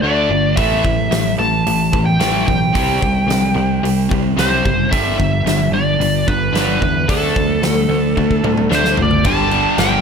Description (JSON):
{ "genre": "hard rock", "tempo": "110 BPM", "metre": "4/4", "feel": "straight", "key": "unclear", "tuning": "A4 = 440 Hz", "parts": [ { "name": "biting lead guitar", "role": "melody", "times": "0.0-10.0 s", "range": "A4 to A5", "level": "-19 LUFS", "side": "right 1 dB", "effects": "overdrive" }, { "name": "cranked stack guitar", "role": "riff", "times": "0.0-10.0 s", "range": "G2 to D4", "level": "-20 LUFS", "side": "left 12 dB", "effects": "overdrive" }, { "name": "heavy high-gain guitar", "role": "riff", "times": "0.0-10.0 s", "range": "G2 to D4", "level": "-20 LUFS", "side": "right 12 dB", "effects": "distortion" }, { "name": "picked electric bass", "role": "bass", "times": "0.0-10.0 s", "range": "F#1 to E2", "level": "-22 LUFS", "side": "equal", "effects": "none" }, { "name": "big rock drum kit", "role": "drums", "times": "0.6-9.9 s", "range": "crash cymbal, hi-hat, kick drum, snare drum, toms", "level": "-20 LUFS", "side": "equal", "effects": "none" }, { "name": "overdriven electric guitar", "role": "riff", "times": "9.2-10.0 s", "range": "G2 to G3", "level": "-22 LUFS", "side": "right 1 dB", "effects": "none" } ], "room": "light reverb", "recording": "none", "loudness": "-13 LUFS", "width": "side -6 dB against mid", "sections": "0.0-9.3 A section", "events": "drum fill 8.2-9.3", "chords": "0.0 D5; 0.6 A5; 2.7 C5; 4.9 G; 7.1 D5; 9.3 G5" }